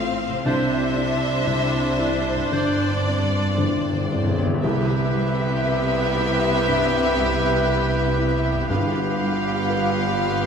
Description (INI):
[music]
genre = cinematic, emotional film score for orchestra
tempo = 59 BPM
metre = 4/4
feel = rubato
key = C major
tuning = A4 = 440 Hz
[part]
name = rich studio violin section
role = melody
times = 0.0-10.5 s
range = D5 to F5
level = -28 LUFS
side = left 2 dB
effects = none
[part]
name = rich studio violin section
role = second line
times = 0.0-10.5 s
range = G4 to C5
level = -30 LUFS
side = left 2 dB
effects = none
[part]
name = felt-muted upright piano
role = accompaniment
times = 0.0-10.5 s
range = G1 to D5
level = -29 LUFS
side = left 2 dB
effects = none
[part]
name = rich studio viola section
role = accompaniment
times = 0.0-10.5 s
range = B3 to D4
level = -31 LUFS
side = right 1 dB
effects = none
[part]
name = warm French horn section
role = sustained chords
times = 0.0-10.5 s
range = B3 to B4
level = -28 LUFS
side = left 4 dB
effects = none
[part]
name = concert harp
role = arpeggios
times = 0.0-10.5 s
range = G2 to D5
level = -36 LUFS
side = left 7 dB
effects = none
[part]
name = clear studio cello section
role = bass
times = 0.0-10.5 s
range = G2 to C3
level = -28 LUFS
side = right 4 dB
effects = none
[part]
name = rich studio double bass section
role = bass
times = 0.0-10.5 s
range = G1 to C2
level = -27 LUFS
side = right 4 dB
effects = none
[part]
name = bright small flute group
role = second line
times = 0.5-10.5 s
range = D5 to F5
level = -30 LUFS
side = equal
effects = none
[part]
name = clear clarinet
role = second line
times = 0.5-10.5 s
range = D4 to G4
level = -31 LUFS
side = left 1 dB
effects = none
[part]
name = warm oboe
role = second line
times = 0.5-10.5 s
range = B4 to C5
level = -30 LUFS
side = right 3 dB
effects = none
[part]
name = timpani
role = percussion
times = 0.5-10.2 s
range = G2 to C3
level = -27 LUFS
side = left 1 dB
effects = none
[sound]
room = moderate scoring stage reverb, RT60 1.6 s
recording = minimal, uncompressed stereo recording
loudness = -19 LUFS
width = side -6 dB against mid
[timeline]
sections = 0.0-4.6 A section; 4.6-10.5 B section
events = timpani fill 2.5-4.6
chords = 0.5 Cadd9; 2.5 Gsus4; 4.6 Cmaj7; 8.7 G7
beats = | 0.47 1.48 2.53 3.58 | 4.64 5.66 6.67 7.68 | 8.70 9.71